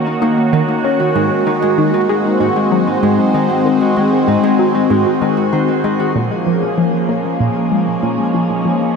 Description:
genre	ambient, sequencer-driven space music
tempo	96 BPM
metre	4/4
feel	straight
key	Bb minor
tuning	A4 = 438 Hz
part	phased analog pad	sustained chords	0.0-9.0 s	Eb3 to Db5	-15 LUFS	equal	phaser, chorus, shimmer reverb
part	Celtic harp	arpeggios	0.0-9.0 s	Ab3 to C5	-20 LUFS	equal	auto-pan, tape echo, shimmer reverb
part	tight sequenced synth	riff	0.0-8.8 s	Ab2 to Eb4	-18 LUFS	left 1 dB	chorus, phaser, tape echo, shimmer reverb
part	wind-like tuned noise texture	texture	7.7-9.0 s	Eb4 to Eb5	-35 LUFS	right 1 dB	none
room	wet plate reverb, RT60 2.9 s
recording	dark, warm production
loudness	-12 LUFS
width	side -5 dB against mid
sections	0.0-6.2 A section; 6.2-9.0 A section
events	none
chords	0.0 Ebm7; 1.2 Ab7; 6.2 Bbm7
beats	0.53 | 1.15 1.78 2.40 3.03 | 3.65 4.28 4.90 5.53 | 6.15 6.78 7.40 8.03 | 8.65

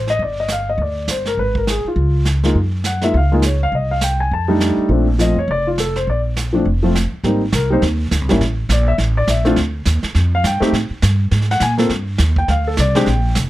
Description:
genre	jazz piano trio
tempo	205 BPM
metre	4/4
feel	swing 60% on 8ths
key	Bb major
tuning	A4 = 440 Hz
part	warm grand piano	melody	0.0-13.3 s	F3 to A5	-18 LUFS	left 1 dB	none
part	upright bass	bass	0.0-13.5 s	F1 to Bb2	-17 LUFS	equal	none
part	vintage brush drum kit	drums	0.1-13.5 s	brushed snare drum, hi-hat, kick drum, snare drum	-24 LUFS	right 3 dB	none
room	little or no reverb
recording	close, detailed microphones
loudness	-14 LUFS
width	side -15 dB against mid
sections	0.0-7.2 A section; 7.2-13.5 B section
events	none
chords	0.2 G5; 1.4 Abm; 2.0 Db; 2.6 Gbmaj7sus2; 3.7 Cm; 4.3 F13; 4.9 Bbmaj7; 7.2 Abmaj7; 8.4 Bbmaj7/A; 9.6 Dm; 10.7 Gsus2; 11.3 Absus2; 11.9 Gsus4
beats	| 0.20 0.50 0.79 1.08 | 1.38 1.67 1.97 2.26 | 2.55 2.85 3.14 3.43 | 3.73 4.02 4.31 4.61 | 4.90 5.19 5.49 5.78 | 6.07 6.36 6.66 6.95 | 7.24 7.53 7.82 8.12 | 8.41 8.70 8.99 9.28 | 9.57 9.87 10.16 10.45 | 10.74 11.03 11.32 11.61 | 11.90 12.20 12.49 12.78 | 13.07 13.36

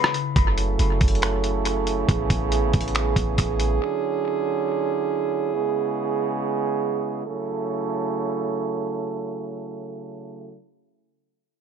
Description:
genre	hip hop, atmospheric cloud-rap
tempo	139 BPM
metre	4/4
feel	half-time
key	F# minor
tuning	A4 = 443 Hz
part	concert harp	melody	0.0-0.7 s	B4	-42 LUFS	left 4 dB	none
part	mellow French horn section	sustained chords	0.0-10.6 s	C#3 to B4	-24 LUFS	right 4 dB	sidechain pumping, low-pass filter
part	lo-fi sampler-style drum kit	drums	0.0-3.7 s	finger snaps, hi-hat, kick drum, rim click	-23 LUFS	equal	tape echo
part	clean 808-style bass	bass	0.4-3.8 s	F#1 to A1	-24 LUFS	right 1 dB	none
room	little or no reverb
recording	echo-heavy mix, nothing above 10.8 kHz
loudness	-22 LUFS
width	side -7 dB against mid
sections	0.4-7.3 A section; 7.3-10.7 B section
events	break 0.0-0.4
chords	0.4 F#m7; 2.1 Amaj9; 3.8 Dmaj9#11; 5.5 C#m7; 7.3 F#m7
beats	| 0.36 0.79 1.22 1.65 | 2.09 2.52 2.95 3.38 | 3.81 4.24 4.68 5.11 | 5.54 5.97 6.40 6.83 | 7.27 7.70 8.13 8.56 | 8.99 9.42 9.86 10.29

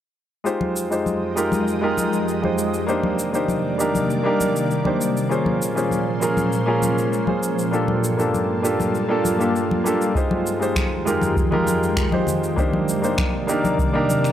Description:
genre	sunset chillout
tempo	99 BPM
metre	4/4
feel	straight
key	F dorian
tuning	A4 = 440 Hz
part	clear baby grand piano	accompaniment	0.4-14.3 s	Ab3 to C5	-21 LUFS	equal	auto-pan, analog delay
part	ethereal airy pad	sustained chords	0.9-14.3 s	F2 to Eb5	-24 LUFS	right 1 dB	ensemble chorus, built-in reverb
part	electronic shaker and finger snaps	drums	0.5-14.3 s	none	-30 LUFS	equal	overdrive
part	congas	percussion	0.6-14.2 s	none	-28 LUFS	left 2 dB	none
part	electronic kick drum	drums	10.2-13.9 s	none	-23 LUFS	equal	none
room	light reverb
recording	dry, gritty hardware recording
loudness	-18 LUFS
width	side -10 dB against mid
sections	0.5-14.3 A section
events	none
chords	0.5 Fm9; 2.9 Cm9; 5.3 Bbm9; 7.7 Gm9; 10.2 Fm9; 12.6 Cm9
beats	| 0.46 1.06 1.67 2.27 | 2.88 3.49 4.09 4.70 | 5.30 5.91 6.52 7.12 | 7.73 8.34 8.94 9.55 | 10.15 10.76 11.37 11.97 | 12.58 13.18 13.79

